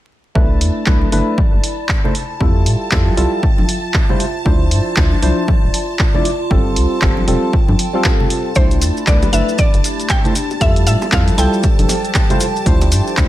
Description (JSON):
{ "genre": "deep house", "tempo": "117 BPM", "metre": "4/4", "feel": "swing 60% on 16ths", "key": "C major", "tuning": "A4 = 441 Hz", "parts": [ { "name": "percussive organ stab", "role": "stabs", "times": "0.3-13.3 s", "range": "F3 to D5", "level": "-20 LUFS", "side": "equal", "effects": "chorus, sidechain pumping, digital delay" }, { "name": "rubbery square bass", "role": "bass", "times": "0.4-13.3 s", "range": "D1 to A2", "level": "-16 LUFS", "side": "equal", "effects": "tube saturation, sidechain pumping" }, { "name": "electronic kick drum", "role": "drums", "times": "0.4-13.3 s", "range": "none", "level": "-15 LUFS", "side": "equal", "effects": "none" }, { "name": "string machine, violins", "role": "texture", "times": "0.4-13.3 s", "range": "A5", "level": "-29 LUFS", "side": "right 1 dB", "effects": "ensemble chorus, sidechain pumping" }, { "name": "warbly tape-like pad", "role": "texture", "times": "1.4-13.3 s", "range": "F3 to C6", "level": "-26 LUFS", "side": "right 2 dB", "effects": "chorus, built-in reverb, sidechain pumping" }, { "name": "punchy analog drum machine", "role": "drums", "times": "0.6-13.3 s", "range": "handclaps, hi-hat", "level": "-21 LUFS", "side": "right 1 dB", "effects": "none" }, { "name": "congas and bongos", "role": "percussion", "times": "1.0-13.3 s", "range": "none", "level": "-25 LUFS", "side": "equal", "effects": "none" }, { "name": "mallet-like synth pluck", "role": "melody", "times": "8.6-12.4 s", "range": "C5 to G5", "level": "-22 LUFS", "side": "right 1 dB", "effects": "chorus, tape echo" }, { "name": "dark analog pad", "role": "sustained chords", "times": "9.0-13.3 s", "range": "F3 to B5", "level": "-25 LUFS", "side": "equal", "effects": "chorus, phaser, sidechain pumping" }, { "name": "maracas", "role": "percussion", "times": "8.6-13.3 s", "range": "none", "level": "-26 LUFS", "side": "left 2 dB", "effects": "none" } ], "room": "light reverb", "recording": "vinyl crackle", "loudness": "-12 LUFS", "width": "side -14 dB against mid", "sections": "0.4-13.3 A section", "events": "none", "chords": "0.4 Cmaj13; 2.1 Fmaj9; 4.5 Dm9; 6.5 G9sus4; 8.6 Cmaj13; 10.4 Fmaj9; 12.7 Dm9" }